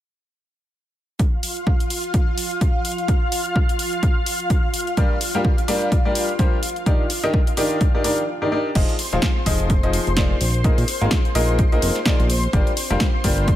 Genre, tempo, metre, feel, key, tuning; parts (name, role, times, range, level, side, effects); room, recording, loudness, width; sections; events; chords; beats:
piano house; 127 BPM; 4/4; swing 58% on 16ths; F dorian; A4 = 444 Hz
analog string pad; sustained chords; 1.2-13.6 s; F4 to C6; -27 LUFS; equal; ensemble chorus, sidechain pumping
electronic kick drum; drums; 1.2-13.6 s; -19 LUFS; equal
house drum kit; drums; 1.2-13.6 s; crash cymbal, hi-hat, snare drum; -26 LUFS; equal
clear grand piano; riff; 5.0-13.5 s; Eb3 to F5; -23 LUFS; left 1 dB; sidechain pumping, low-pass filter, digital delay
fat analog bass; bass; 8.8-13.6 s; Eb1 to Bb2; -21 LUFS; equal; tube saturation, sidechain pumping
digital ambience; -17 LUFS; side -13 dB against mid
1.2-8.8 A section; 8.8-13.6 B section
break 8.3-8.8
1.2 N.C.; 5.0 Gm7; 6.9 Ebmaj7; 8.8 Fm7; 10.4 Bb7sus4; 12.5 Gm7
| 1.19 1.67 2.14 2.61 | 3.08 3.56 4.03 4.50 | 4.97 5.45 5.92 6.39 | 6.86 7.34 7.81 8.28 | 8.75 9.22 9.70 10.17 | 10.64 11.12 11.59 12.06 | 12.53 13.01 13.48